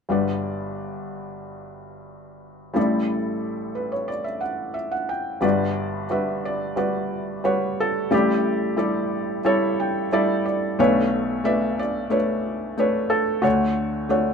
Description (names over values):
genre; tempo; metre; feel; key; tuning
folk; 90 BPM; 4/4; straight; unclear; A4 = 440 Hz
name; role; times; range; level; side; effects
felt-muted upright piano; melody; 0.1-14.3 s; G1 to G5; -21 LUFS; equal; none
room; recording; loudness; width
moderate small room ambience, RT60 0.5 s; minimal, uncompressed stereo recording; -21 LUFS; side -6 dB against mid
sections
0.1-5.4 A section; 5.4-14.3 B section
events
felt piano fill 3.4-5.4, 9.5-10.8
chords
0.1 Gmaj7; 2.8 A7sus4; 5.4 Gmaj7; 8.1 A7sus4; 10.8 Bm9; 13.4 Dmaj7